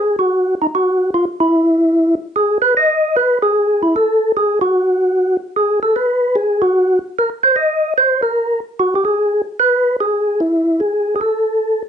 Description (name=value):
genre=jazz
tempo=149 BPM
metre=4/4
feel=swing 64% on 8ths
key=unclear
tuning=A4 = 440 Hz
part: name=percussive tonewheel organ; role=solo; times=0.0-11.8 s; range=D#4 to D#5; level=-13 LUFS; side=equal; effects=chorus vibrato, stopped rotary speaker
room=wet studio reverb, RT60 0.5 s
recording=rough home demo mix, nothing above 10.3 kHz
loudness=-13 LUFS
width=side -8 dB against mid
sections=0.0-11.9 A section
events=none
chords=none